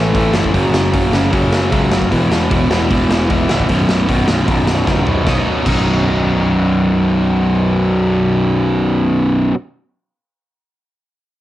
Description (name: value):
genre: punk rock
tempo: 152 BPM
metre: 4/4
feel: straight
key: B major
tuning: A4 = 441 Hz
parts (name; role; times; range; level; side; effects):
- distorted electric guitar; riff; 0.0-9.6 s; B1 to D#4; -14 LUFS; equal; distortion, cassette tape
- fuzz picked electric bass; bass; 0.0-9.5 s; B0 to C#2; -19 LUFS; equal; overdrive
- raw garage drum kit; drums; 0.1-5.8 s; crash cymbal, hi-hat, kick drum, snare drum, toms; -19 LUFS; equal; cassette tape
room: little or no reverb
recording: home recording on cassette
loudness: -12 LUFS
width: side -14 dB against mid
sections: 0.0-5.3 A section; 5.3-8.4 B section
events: drum fill 4.9-5.3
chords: 0.0 A5; 0.5 F#5; 2.1 E5; 3.7 B5; 5.3 B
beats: 0.14 | 0.53 0.93 1.32 1.72 | 2.11 2.50 2.90 3.29 | 3.69 4.08 4.48 4.87 | 5.27 5.66 6.05 6.45 | 6.84 7.24 7.63 8.03